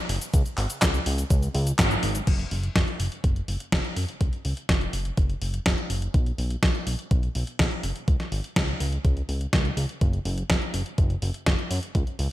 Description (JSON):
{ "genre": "italo disco", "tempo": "124 BPM", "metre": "4/4", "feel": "straight", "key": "unclear", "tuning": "A4 = 439 Hz", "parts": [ { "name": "fat analog bass", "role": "bass", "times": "0.1-12.3 s", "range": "F#1 to F#2", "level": "-28 LUFS", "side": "equal", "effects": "none" }, { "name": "clean 12-bit digital drum machine", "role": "drums", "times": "0.1-12.3 s", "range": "cabasa, crash cymbal, handclaps, hi-hat, snare drum", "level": "-27 LUFS", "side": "equal", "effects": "gated reverb" }, { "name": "electronic kick drum", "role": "drums", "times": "0.3-12.0 s", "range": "none", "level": "-24 LUFS", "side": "equal", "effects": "none" } ], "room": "light reverb", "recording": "bright 1980s-style digital production", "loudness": "-23 LUFS", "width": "side -15 dB against mid", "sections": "0.0-2.3 A section; 2.3-12.3 B section", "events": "band accent 1.8", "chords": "none" }